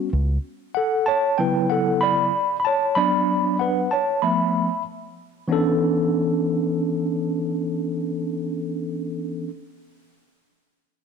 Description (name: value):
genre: hip hop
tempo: 95 BPM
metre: 4/4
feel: swing 65% on 16ths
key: B minor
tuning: A4 = 440 Hz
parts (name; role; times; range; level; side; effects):
- tine electric piano; accompaniment; 0.0-9.5 s; C#3 to B5; -20 LUFS; equal; medium stereo tremolo
room: moderate echo chamber reverb, RT60 1.8 s, studio ambience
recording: 1960s-style stereo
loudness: -20 LUFS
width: side -6 dB against mid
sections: 0.0-5.5 A section; 5.5-8.0 B section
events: tine electric piano solo 0.0-5.5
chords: 0.4 Dmaj13; 3.0 Bm9/F#; 4.2 Fmaj7#11; 5.5 Bm11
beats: | 0.44 1.07 1.70 2.33 | 2.97 3.60 4.23 4.86 | 5.49 6.12 6.76 7.39